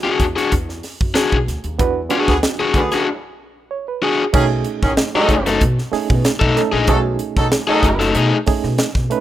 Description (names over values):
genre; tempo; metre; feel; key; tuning
funk; 94 BPM; 4/4; straight; B mixolydian; A4 = 440 Hz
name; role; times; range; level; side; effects
overdriven electric guitar; accompaniment; 0.0-8.4 s; A3 to A4; -18 LUFS; left 4 dB; none
barky reed electric piano; stabs; 0.0-9.2 s; A3 to C#5; -22 LUFS; right 9 dB; overdrive, fast tremolo
upright bass; bass; 0.1-9.1 s; F#1 to B2; -21 LUFS; equal; none
crisp fusion drum kit; drums; 0.2-9.2 s; crash cymbal, hi-hat, kick drum, snare drum; -19 LUFS; equal; none
mellow horn section; second line; 2.3-8.1 s; D3 to A4; -21 LUFS; right 2 dB; none
room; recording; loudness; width
studio ambience; rough home demo mix, faint mains hum; -15 LUFS; side -12 dB against mid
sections
0.0-4.3 A section; 4.3-9.2 B section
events
band accent 1.8-4.3; break 3.1-4.3; reed electric piano fill 3.4-4.3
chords
0.0 E9; 4.3 B13